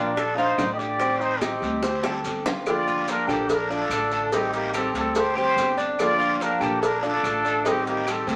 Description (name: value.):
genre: latin, Cuban son and guajira.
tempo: 144 BPM.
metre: 4/4.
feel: straight.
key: G minor.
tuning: A4 = 440 Hz.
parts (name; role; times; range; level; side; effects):
trumpet with plunger mute; melody; 0.0-8.4 s; F4 to Eb5; -28 LUFS; equal; none.
warm trumpet; second line; 0.0-8.4 s; Bb3 to G4; -32 LUFS; equal; none.
nylon-string guitar; accompaniment; 0.0-8.4 s; D3 to G4; -33 LUFS; equal; none.
Cuban tres; arpeggios; 0.0-8.4 s; C4 to D5; -32 LUFS; equal; none.
upright bass; bass; 0.0-8.4 s; G1 to D2; -38 LUFS; equal; none.
bongos and cowbell; percussion; 0.2-8.4 s; none; -31 LUFS; equal; none.
guiro; percussion; 0.2-8.4 s; none; -39 LUFS; equal; none.
maracas; percussion; 0.2-8.4 s; none; -44 LUFS; equal; none.
claves; percussion; 0.6-8.3 s; none; -42 LUFS; equal; none.
room: moderate studio reverb, RT60 0.8 s.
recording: vinyl crackle.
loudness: -24 LUFS.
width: mono.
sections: 0.0-2.7 A section; 2.7-8.4 B section.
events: drum fill 1.8-2.7.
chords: 0.2 Bbmaj7; 1.0 Am7b5; 1.8 D7sus4; 2.7 Gm7; 3.5 Bbmaj7; 4.3 Am7b5; 5.2 D7sus4; 6.0 Gm7; 6.8 Bbmaj7; 7.7 Am7b5.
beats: 0.17 0.58 | 1.00 1.42 1.83 2.25 | 2.66 3.08 3.50 3.91 | 4.33 4.74 5.16 5.57 | 5.99 6.41 6.82 7.24 | 7.65 8.07.